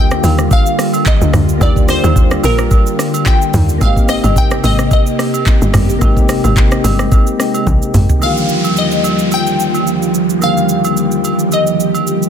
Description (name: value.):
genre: amapiano.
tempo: 109 BPM.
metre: 4/4.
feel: swing 55% on 16ths.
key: Eb major.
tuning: A4 = 440 Hz.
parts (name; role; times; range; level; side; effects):
glassy wavetable pluck; melody; 0.0-12.3 s; Bb4 to G5; -19 LUFS; left 2 dB; chorus, tape echo.
soft electric-piano-like synth keys; accompaniment; 0.0-12.3 s; D3 to G4; -20 LUFS; left 3 dB; chorus, tremolo.
string machine, violas; sustained chords; 0.0-12.3 s; Eb2 to G4; -17 LUFS; equal; ensemble chorus.
tight log drum bass; bass; 0.0-8.1 s; G1 to Eb2; -15 LUFS; equal; none.
smooth R&B drum kit; drums; 0.1-12.3 s; handclaps, hi-hat, kick drum, rim click, shaker, toms; -13 LUFS; equal; none.
agogo bells; percussion; 0.2-12.1 s; none; -24 LUFS; right 7 dB; none.
downlifter; sound effects; 8.2-12.3 s; none; -25 LUFS; equal; none.
room: little or no reverb.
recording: dense, heavily limited modern master.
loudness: -10 LUFS.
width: side -8 dB against mid.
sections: 0.0-8.2 A section; 8.2-12.3 B section.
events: drop 0.0-8.2; drum fill 7.7-8.2.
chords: 0.0 Ebmaj9; 3.8 Abmaj9; 8.2 Ebmaj9.